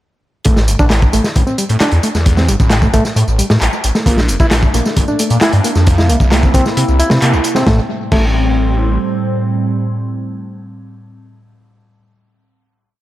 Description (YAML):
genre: breakbeat, breaks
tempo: 133 BPM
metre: 4/4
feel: straight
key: A phrygian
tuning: A4 = 440 Hz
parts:
  - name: crunchy breakbeat drum kit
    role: drums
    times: 0.4-8.3 s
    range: crash cymbal, hi-hat, kick drum, snare drum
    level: -15 LUFS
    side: equal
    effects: tape echo
  - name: overdriven reed electric piano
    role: riff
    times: 0.5-8.2 s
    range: G3 to E4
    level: -19 LUFS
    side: equal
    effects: tube saturation, tape echo
  - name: phased detuned saw bass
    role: bass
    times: 0.5-9.0 s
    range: F1 to C3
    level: -13 LUFS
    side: equal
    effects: phaser
  - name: electronic tambourine and handclaps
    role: drums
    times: 0.5-7.6 s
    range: none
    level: -21 LUFS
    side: equal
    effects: tape echo
  - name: phased analog pad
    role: sustained chords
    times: 4.4-12.0 s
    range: A2 to E4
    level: -19 LUFS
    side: right 1 dB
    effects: phaser, chorus, sidechain pumping
room: light reverb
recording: echo-heavy mix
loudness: -11 LUFS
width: side -14 dB against mid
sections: 0.5-7.7 drop; 7.7-11.3 final chord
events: drop 0.5-7.7; band accent 7.2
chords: 0.5 A7(no3); 4.1 Bbmaj7; 5.9 C7; 7.7 Am7